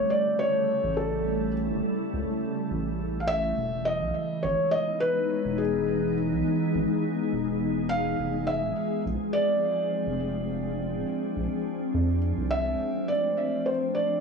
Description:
IDM; 104 BPM; 4/4; straight; A4 = 440 Hz
felt-muted upright piano; melody; 0.0-14.2 s; G#4 to F5; -28 LUFS; equal; analog delay
glassy FM pad; sustained chords; 0.0-14.2 s; C#3 to A4; -28 LUFS; equal; ensemble chorus, built-in reverb
round analog bass; bass; 0.8-12.8 s; D1 to F2; -31 LUFS; right 1 dB
light reverb, small room ambience; dry, gritty hardware recording, studio reverb; -25 LUFS; side -5 dB against mid
0.0-12.8 A section; 12.8-14.2 B section
0.0 A7; 3.6 Emaj7; 8.2 Fm6; 12.8 Dm7
0.12 0.69 | 1.27 1.85 2.42 3.00 | 3.58 4.16 4.73 5.31 | 5.89 6.46 7.04 7.62 | 8.19 8.77 9.35 9.93 | 10.50 11.08 11.65 12.23 | 12.81 13.39 13.96

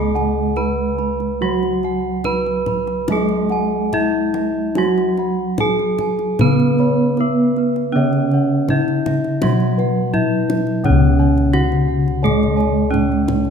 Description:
Javanese gamelan; 71-87 BPM; 4/4; straight; C# slendro; A4 = 445 Hz
gamelan-type bronze metallophone; melody; 0.0-13.5 s; B3-40c to B4-40c; -21 LUFS; equal
gamelan-type bronze metallophone; accompaniment; 0.0-13.5 s; C#3 to B3-40c; -20 LUFS; right 2 dB
gamelan-type bossed gongs; arpeggios; 0.0-13.3 s; B4-40c to B5-40c; -29 LUFS; left 7 dB
gamelan-type bronze metallophone; arpeggios; 0.0-13.5 s; B4-40c to B5-40c; -27 LUFS; right 8 dB
gamelan-type bossed gongs; bass; 0.0-13.5 s; C#2 to F#4-20c; -21 LUFS; left 1 dB
kendang; percussion; 0.2-13.5 s; -26 LUFS; left 2 dB
moderate concert hall reverb, RT60 2.1 s; minimal, uncompressed stereo recording; -15 LUFS; side -7 dB against mid
0.0-10.9 A section; 10.9-13.5 B section
0.57 | 1.41 2.25 3.10 3.94 | 4.78 5.61 6.42 7.20 | 7.97 8.72 9.45 10.16 | 10.86 11.55 12.24 12.93

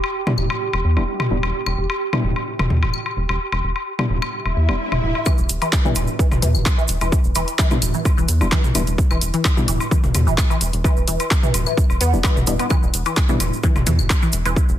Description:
minimal techno; 129 BPM; 4/4; straight; E minor; A4 = 438 Hz
electronic woodblock, toms and claves; percussion; 0.0-14.5 s; -24 LUFS; left 1 dB; tape echo
swarming drone; texture; 0.0-5.3 s; G4; -30 LUFS; right 4 dB; built-in reverb, sidechain pumping
percussive organ stab; stabs; 0.3-13.4 s; G3 to E4; -27 LUFS; left 2 dB; chorus, tape echo
rubbery square bass; bass; 0.4-14.8 s; E1 to E2; -21 LUFS; equal; sidechain pumping
swell; sound effects; 4.5-5.3 s; -26 LUFS; left 1 dB
resonant blip pluck; riff; 5.3-14.5 s; B2 to B3; -25 LUFS; equal; phaser, analog chorus, sidechain pumping, ping-pong delay
electronic kick drum; drums; 5.3-14.7 s; -17 LUFS; equal; overdrive
cabasa; percussion; 5.3-14.8 s; -30 LUFS; right 6 dB
punchy analog drum machine; drums; 5.5-14.5 s; handclaps, hi-hat; -24 LUFS; left 1 dB; overdrive, low-pass filter on hats, low-pass filter on snare
light reverb; dense, heavily limited modern master; -16 LUFS; side -12 dB against mid
0.0-5.3 A section; 5.3-14.8 B section
swell 4.5-5.3; drop 5.3-14.8
0.0 Em7
0.15 0.61 1.08 | 1.54 2.01 2.47 2.94 | 3.40 3.87 4.33 4.80 | 5.26 5.73 6.19 6.66 | 7.12 7.59 8.05 8.52 | 8.98 9.45 9.91 10.38 | 10.84 11.31 11.77 12.24 | 12.70 13.17 13.63 14.10 | 14.56

